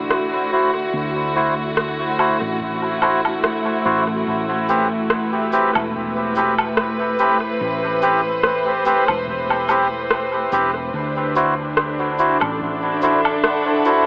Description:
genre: ambient dub.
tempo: 72 BPM.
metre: 4/4.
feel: swing 55% on 16ths.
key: A dorian.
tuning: A4 = 444 Hz.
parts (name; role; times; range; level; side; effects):
dark chamber string section; sustained chords; 0.0-14.1 s; D3 to F#5; -21 LUFS; equal; cassette tape.
hollow-body short-scale fingered electric bass; bass; 0.0-14.1 s; E1 to D2; -31 LUFS; equal; tube saturation.
electronic rim click, woodblock and cabasa; drums; 0.1-14.0 s; none; -23 LUFS; equal; studio reverb, cassette tape, dub echo.
melodica; stabs; 0.5-14.0 s; C4 to C5; -19 LUFS; equal; cassette tape, dub echo.
electronic kick drum; drums; 2.6-12.8 s; none; -43 LUFS; equal; none.
room: moderate spring reverb, RT60 2.3 s.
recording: home recording on cassette, vinyl crackle, AM radio sound.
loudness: -16 LUFS.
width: side -38 dB against mid.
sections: 0.0-4.3 A section; 4.3-14.1 B section.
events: none.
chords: 0.0 D7; 4.3 Am7; 10.9 D7.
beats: 0.11 | 0.94 1.77 2.61 3.44 | 4.27 5.11 5.94 6.77 | 7.61 8.44 9.27 10.11 | 10.94 11.77 12.61 13.44.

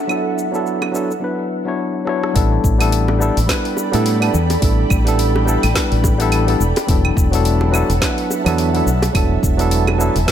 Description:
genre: sunset chillout.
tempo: 106 BPM.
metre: 4/4.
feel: swing 57% on 16ths.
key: unclear.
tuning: A4 = 438 Hz.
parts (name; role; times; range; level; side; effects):
ethereal airy pad; sustained chords; 0.0-10.3 s; A3 to B5; -25 LUFS; equal; ensemble chorus, built-in reverb.
barky tine electric piano; accompaniment; 0.1-10.3 s; F#3 to C#5; -19 LUFS; moving between left 7 dB and right 6 dB; auto-pan, ping-pong delay.
deep house drum kit; drums; 0.1-10.3 s; claves, hi-hat, rim click, shaker, snare drum; -24 LUFS; right 1 dB; studio reverb.
bongos; percussion; 0.8-10.0 s; none; -26 LUFS; right 1 dB; none.
mellow fretless electric bass; bass; 2.4-10.2 s; E1 to A2; -17 LUFS; equal; analog chorus.
electronic kick drum; drums; 2.4-10.3 s; none; -18 LUFS; equal; studio reverb.
room: light reverb.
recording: none.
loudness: -14 LUFS.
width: side -10 dB against mid.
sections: 0.0-2.4 A section; 2.4-10.3 B section.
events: filter sweep on drum 0.0-2.4; drum fill 2.1.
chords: 0.0 E9sus4; 2.4 A9sus4; 6.9 E9sus4.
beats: | 0.09 0.66 1.22 1.79 | 2.36 2.92 3.49 4.05 | 4.62 5.19 5.75 6.32 | 6.88 7.45 8.02 8.58 | 9.15 9.71 10.28.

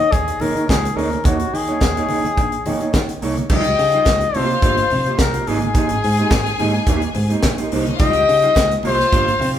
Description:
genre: disco.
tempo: 107 BPM.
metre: 4/4.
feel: straight.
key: Ab major from 3.5 s.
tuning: A4 = 442 Hz.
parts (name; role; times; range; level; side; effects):
clear flugelhorn; melody; 0.0-9.5 s; Gb4 to Eb5; -18 LUFS; left 3 dB; none.
mellow electric guitar; accompaniment; 0.0-9.6 s; G3 to Db5; -23 LUFS; right 4 dB; spring reverb.
fingered electric bass; bass; 0.0-9.6 s; G1 to Eb3; -23 LUFS; equal; tube saturation.
tight funk drum kit; drums; 0.0-9.6 s; crash cymbal, hi-hat, kick drum, snare drum; -20 LUFS; equal; none.
congas; percussion; 0.1-9.5 s; none; -32 LUFS; left 1 dB; none.
bright studio string section; second line; 3.5-9.6 s; Ab3 to Ab5; -26 LUFS; left 3 dB; none.
group handclap; percussion; 8.6-8.7 s; none; -36 LUFS; right 3 dB; none.
room: moderate large studio reverb, RT60 1.3 s.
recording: band playing live in one room.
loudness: -15 LUFS.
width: side -10 dB against mid.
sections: 0.0-3.5 A section; 3.5-9.6 B section.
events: none.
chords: 0.0 Eb7sus4; 3.5 Dbmaj9#11; 4.3 C7sus4; 5.5 Abmaj9; 8.0 Dbmaj9#11; 8.8 C7sus4.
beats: 0.12 0.69 | 1.25 1.81 2.38 2.94 | 3.50 4.06 4.62 5.19 | 5.75 6.31 6.87 7.44 | 8.00 8.56 9.12.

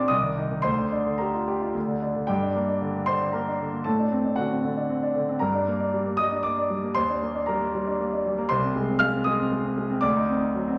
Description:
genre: classical, virtuoso piano study.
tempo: 116 BPM.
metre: 3/4.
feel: rubato.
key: G minor.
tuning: A4 = 440 Hz.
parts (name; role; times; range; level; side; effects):
warm concert grand piano; solo; 0.0-10.8 s; Bb1 to F6; -25 LUFS; equal; none.
room: wet recital hall reverb, RT60 1.4 s.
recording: none.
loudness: -25 LUFS.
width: mono.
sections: 0.0-2.3 A section; 2.3-10.8 B section.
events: none.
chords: 0.1 Cm; 0.6 Gm/D; 1.7 N.C.; 2.3 Gm; 3.9 D7/A; 5.4 Gm; 7.0 Ebmaj7; 8.5 Ab/C; 10.0 D7b9.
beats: 0.11 | 0.65 1.20 1.74 | 2.29 2.81 3.34 | 3.86 4.37 4.90 | 5.42 5.94 6.45 | 6.97 7.48 7.99 | 8.50 9.01 9.52 | 10.03 10.54.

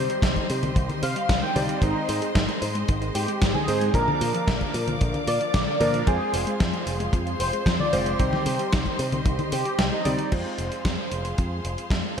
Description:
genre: italo disco.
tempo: 113 BPM.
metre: 4/4.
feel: straight.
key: F dorian.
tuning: A4 = 440 Hz.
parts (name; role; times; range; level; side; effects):
wide unison lead; melody; 0.0-10.3 s; Eb4 to G5; -28 LUFS; equal; analog chorus, cassette tape, digital delay.
rich studio string section; sustained chords; 0.0-12.2 s; Ab3 to D6; -33 LUFS; left 1 dB; none.
wide unison pluck; arpeggios; 0.0-10.3 s; D3 to C5; -33 LUFS; left 2 dB; digital delay.
bright electric grand piano; stabs; 0.0-12.2 s; F3 to D5; -31 LUFS; right 3 dB; digital delay.
picked electric bass with an envelope filter; bass; 0.0-12.2 s; F1 to C3; -30 LUFS; equal; none.
gated 80s digital drum machine; drums; 0.1-12.2 s; congas, crash cymbal, hi-hat, snare drum; -28 LUFS; left 1 dB; gated reverb, gated reverb snare.
kick drum; drums; 0.2-12.0 s; none; -23 LUFS; equal; none.
room: moderate lush hall reverb, RT60 2.8 s.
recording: bright 1980s-style digital production.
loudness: -22 LUFS.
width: side -7 dB against mid.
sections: 0.0-10.3 A section; 10.3-12.2 B section.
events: kick drops out 9.8-10.3.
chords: 0.0 Cm; 1.8 Ab; 3.9 Bb; 6.1 Fm; 8.2 Cm; 10.3 Fm.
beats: 0.23 0.76 1.29 | 1.82 2.35 2.88 3.42 | 3.95 4.48 5.01 5.54 | 6.07 6.60 7.13 7.66 | 8.20 8.73 9.26 9.79 | 10.32 10.85 11.38 11.91.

